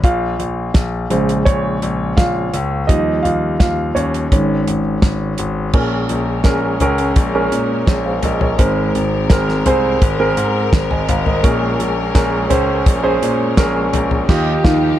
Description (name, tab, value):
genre	piano-driven pop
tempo	84 BPM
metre	4/4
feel	straight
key	Bb minor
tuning	A4 = 440 Hz
part	warm concert grand piano	accompaniment	0.0-15.0 s	Ab2 to Ab5	-17 LUFS	right 2 dB	plate reverb
part	warm concert grand piano	bass	0.0-14.9 s	Ab1 to Bb2	-20 LUFS	left 3 dB	none
part	damped 70s drum kit	drums	0.0-14.8 s	crash cymbal, hi-hat, kick drum, snare drum, toms	-15 LUFS	equal	none
part	clear studio string section	sustained chords	5.7-15.0 s	F3 to Bb4	-25 LUFS	left 2 dB	none
room	light reverb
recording	dark, warm production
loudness	-14 LUFS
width	side -12 dB against mid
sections	0.0-5.7 A section; 5.7-15.0 B section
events	grand piano solo 0.0-5.7; band accent 14.3-15.0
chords	0.0 Bbm7; 2.9 Ebadd9; 4.3 Absus4; 5.7 Bbm7; 8.6 Abadd9; 11.4 Bbm7; 14.3 Ebadd9